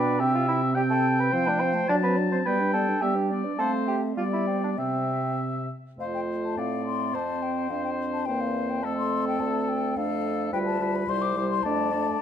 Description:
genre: quick classical-period movement for wind quintet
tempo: 106 BPM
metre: 2/4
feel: rubato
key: C major, F major from 6.0 s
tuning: A4 = 438 Hz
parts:
  - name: mellow hollow concert flute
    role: melody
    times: 0.0-12.2 s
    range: B4 to D6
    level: -31 LUFS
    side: left 9 dB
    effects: none
  - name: warm oboe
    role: second line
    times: 0.0-12.2 s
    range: A4 to A5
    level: -31 LUFS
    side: left 3 dB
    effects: none
  - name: dark clarinet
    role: accompaniment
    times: 0.0-12.2 s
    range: A3 to F4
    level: -30 LUFS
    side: right 7 dB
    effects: none
  - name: warm French horn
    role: accompaniment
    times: 0.0-12.2 s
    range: B2 to C4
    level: -30 LUFS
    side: left 1 dB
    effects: none
  - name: warm bassoon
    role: bass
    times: 0.0-12.1 s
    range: C2 to C5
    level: -30 LUFS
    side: right 2 dB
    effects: none
room: moderate recital hall reverb, RT60 1.6 s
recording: dark, warm production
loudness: -24 LUFS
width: side -9 dB against mid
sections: 0.0-6.0 A section; 6.0-12.2 B section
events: none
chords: 0.2 C; 1.3 F; 1.9 D7/F#; 2.5 G; 3.6 F/A; 4.2 G; 4.8 C; 6.0 F; 7.1 C5/F; 7.7 F5; 8.3 C7/E; 8.8 F; 9.4 Dm; 10.5 G7/D; 11.1 C; 11.6 Dm/F

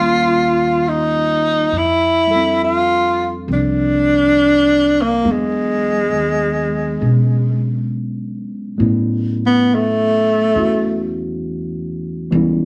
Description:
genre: jazz ballad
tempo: 68 BPM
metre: 4/4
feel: swing 68% on 8ths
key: A major from 8.8 s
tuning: A4 = 440 Hz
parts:
  - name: breathy tenor saxophone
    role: melody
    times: 0.0-11.2 s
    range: G#3 to F4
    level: -17 LUFS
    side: equal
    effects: none
  - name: tine electric piano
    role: accompaniment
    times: 0.0-12.7 s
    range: E3 to A4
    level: -24 LUFS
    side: equal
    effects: overdrive
  - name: upright bass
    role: bass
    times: 0.0-12.7 s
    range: C2 to B2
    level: -25 LUFS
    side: equal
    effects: none
room: moderate studio reverb, RT60 0.8 s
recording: none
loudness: -16 LUFS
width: mono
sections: 0.0-8.8 A section; 8.8-12.7 B section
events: tenor saxophone solo 8.8-12.7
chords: 0.0 Eb9; 1.7 F69; 5.2 E7; 8.8 A6

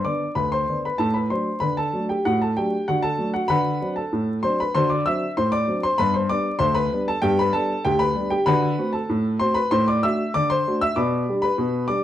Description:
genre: ragtime piano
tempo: 96 BPM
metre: 2/4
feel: straight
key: G major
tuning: A4 = 440 Hz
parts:
  - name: warm upright piano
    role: solo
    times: 0.0-12.0 s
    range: D2 to E6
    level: -20 LUFS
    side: equal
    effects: none
room: moderate studio reverb, RT60 0.8 s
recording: dark, warm production, vinyl crackle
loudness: -20 LUFS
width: side -12 dB against mid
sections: 0.0-12.0 A section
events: none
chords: 0.0 G (rootless); 1.0 D7/A; 3.5 D7; 6.0 G; 8.5 D7; 9.7 D7/A; 10.9 G/B

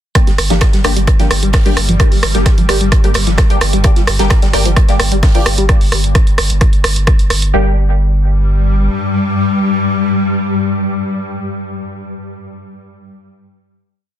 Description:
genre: driving peak-time techno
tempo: 130 BPM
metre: 4/4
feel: straight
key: G minor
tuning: A4 = 440 Hz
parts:
  - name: filtered dub chord stab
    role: stabs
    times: 0.2-11.1 s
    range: Bb3 to G4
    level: -21 LUFS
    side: left 1 dB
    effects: phaser, ensemble chorus, sidechain pumping, dub echo
  - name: swarming drone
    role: drone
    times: 1.3-11.1 s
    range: G2 to G3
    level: -19 LUFS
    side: left 2 dB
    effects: built-in reverb, sidechain pumping
  - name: compact cocktail drum kit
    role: drums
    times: 0.2-5.6 s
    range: hi-hat, snare drum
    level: -27 LUFS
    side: right 2 dB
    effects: high-pass filter on hats, soft clipping on snare, high-pass filter on snare, high-pass filter on room
  - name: electronic kick drum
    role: drums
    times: 0.2-7.2 s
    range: none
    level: -10 LUFS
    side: equal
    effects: none
  - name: punchy analog drum machine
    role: drums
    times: 0.2-7.5 s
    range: hi-hat, rim click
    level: -17 LUFS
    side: right 2 dB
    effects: sidechain pumping on hats
  - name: tight sequenced synth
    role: riff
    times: 0.3-7.8 s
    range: F3 to G3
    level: -20 LUFS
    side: left 1 dB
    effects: chorus, phaser, tube saturation, sidechain pumping, dub echo
  - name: saturated sub bass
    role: bass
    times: 0.3-8.9 s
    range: G1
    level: -15 LUFS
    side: equal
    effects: overdrive, sidechain pumping, low-pass filter
room: little or no reverb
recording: dense, heavily limited modern master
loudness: -10 LUFS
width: side -11 dB against mid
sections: 0.2-7.5 groove; 7.5-11.2 final chord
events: filter sweep on synth arpeggio sound 0.2-5.7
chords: 0.2 Gm

